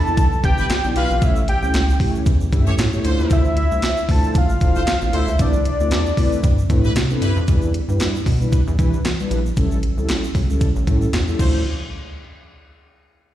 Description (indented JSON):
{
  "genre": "early-eighties boogie funk",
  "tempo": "115 BPM",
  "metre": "4/4",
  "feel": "swing 56% on 16ths",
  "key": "unclear",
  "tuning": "A4 = 440 Hz",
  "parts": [
    { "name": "fat analog lead", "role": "melody", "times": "0.0-6.9 s", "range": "D5 to A5", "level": "-23 LUFS", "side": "equal", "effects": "chorus, slapback echo" },
    { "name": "mellow synth brass", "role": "accompaniment", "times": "0.0-11.6 s", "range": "F3 to E5", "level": "-25 LUFS", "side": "left 1 dB", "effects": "chorus, slapback echo" },
    { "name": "rubbery square bass", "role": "bass", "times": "0.0-11.6 s", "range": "F1 to E3", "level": "-19 LUFS", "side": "equal", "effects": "none" },
    { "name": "egg shaker", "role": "percussion", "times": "0.1-11.6 s", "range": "none", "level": "-43 LUFS", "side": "right 4 dB", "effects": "slapback echo" },
    { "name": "clean 12-bit digital drum machine", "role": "drums", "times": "0.2-11.5 s", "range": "crash cymbal, handclaps, hi-hat, kick drum, snare drum", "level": "-20 LUFS", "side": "equal", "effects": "overdrive" },
    { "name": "clear horn section", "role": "second line", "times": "0.6-7.4, 11.4-11.6 s", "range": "A3 to C#5", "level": "-31 LUFS", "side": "equal", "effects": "slapback echo" }
  ],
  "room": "little or no reverb",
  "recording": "live gig heard through the venue's PA, recital hall reverb",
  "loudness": "-16 LUFS",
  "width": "side -12 dB against mid",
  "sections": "0.0-7.5 A section; 7.5-11.7 B section; 11.7-13.3 C section",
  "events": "none",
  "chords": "0.0 Em7; 1.2 A7; 3.0 Dm9; 5.4 Cmaj13; 7.5 Em7; 9.6 A7; 11.4 Dm9; 11.7 N.C."
}